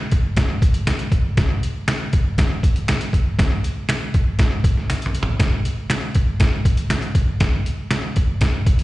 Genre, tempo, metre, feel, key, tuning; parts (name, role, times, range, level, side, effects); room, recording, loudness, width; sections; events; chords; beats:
soul; 119 BPM; 4/4; straight
trip hop sampler-style drum kit; drums; 0.1-8.8 s; hi-hat, kick drum, snare drum, toms; -17 LUFS; equal; slapback echo
finger snaps; percussion; 0.9-8.0 s; -29 LUFS; right 1 dB; slapback echo
little or no reverb; live gig heard through the venue's PA, recital hall reverb, nothing above 10.9 kHz; -17 LUFS; side -18 dB against mid
0.0-8.8 A section
drum fill 4.9-5.4
0.37 0.87 | 1.37 1.88 2.38 2.88 | 3.38 3.89 4.39 4.89 | 5.40 5.90 6.40 6.91 | 7.41 7.92 8.42